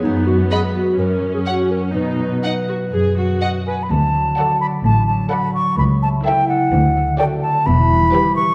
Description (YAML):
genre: cinematic, playful, whimsical film cue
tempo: 127 BPM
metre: 4/4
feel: straight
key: B major, D major from 3.9 s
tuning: A4 = 440 Hz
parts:
  - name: dark clarinet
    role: second line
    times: 0.0-3.6 s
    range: D#4 to B4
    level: -24 LUFS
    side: equal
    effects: none
  - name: rich studio viola section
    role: accompaniment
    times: 0.0-8.5 s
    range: B3 to B4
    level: -28 LUFS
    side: equal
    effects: none
  - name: concert harp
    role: arpeggios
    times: 0.0-8.5 s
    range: F#2 to D#5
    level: -23 LUFS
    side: equal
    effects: none
  - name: warm studio cello section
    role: bass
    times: 0.0-8.0 s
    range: C#2 to B2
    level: -26 LUFS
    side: equal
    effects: none
  - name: warm studio violin section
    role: melody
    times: 0.5-8.5 s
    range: B4 to B5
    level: -30 LUFS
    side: equal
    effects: none
  - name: warm studio violin section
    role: second line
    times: 0.5-8.5 s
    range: G4 to F#5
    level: -32 LUFS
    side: equal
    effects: none
  - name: concert flute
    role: second line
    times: 3.4-8.5 s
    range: F#5 to C#6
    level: -20 LUFS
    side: equal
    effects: none
  - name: warm studio double bass section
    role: bass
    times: 3.9-8.0 s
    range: E1 to D2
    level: -23 LUFS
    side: equal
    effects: none
room: wet scoring stage reverb, RT60 1.8 s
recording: dark, warm production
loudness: -17 LUFS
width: mono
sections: 0.0-3.9 A section; 3.9-8.5 B section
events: none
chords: 0.0 B/F#; 1.0 F#5; 1.9 B; 3.9 D; 5.8 A/C#; 6.7 D; 7.7 Em